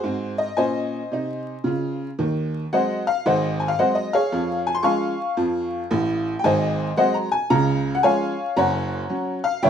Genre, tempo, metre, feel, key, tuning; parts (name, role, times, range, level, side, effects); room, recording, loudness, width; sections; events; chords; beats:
jazz, stride piano; 113 BPM; 4/4; swing 66% on 8ths; A4 = 440 Hz
tack piano; solo; 0.0-9.7 s; Gb1 to Db6; -20 LUFS; equal
moderate studio reverb, RT60 0.7 s; minimal, uncompressed stereo recording, vinyl crackle; -20 LUFS; side -8 dB against mid
0.0-9.7 A section
0.0 Ab7; 2.2 Ab7/Eb; 4.3 Db/F; 6.4 Ab7; 7.5 Db; 8.6 Gb
| 0.05 0.58 1.11 1.65 | 2.18 2.71 3.25 3.78 | 4.31 4.84 5.37 5.91 | 6.44 6.97 7.50 8.03 | 8.57 9.10 9.63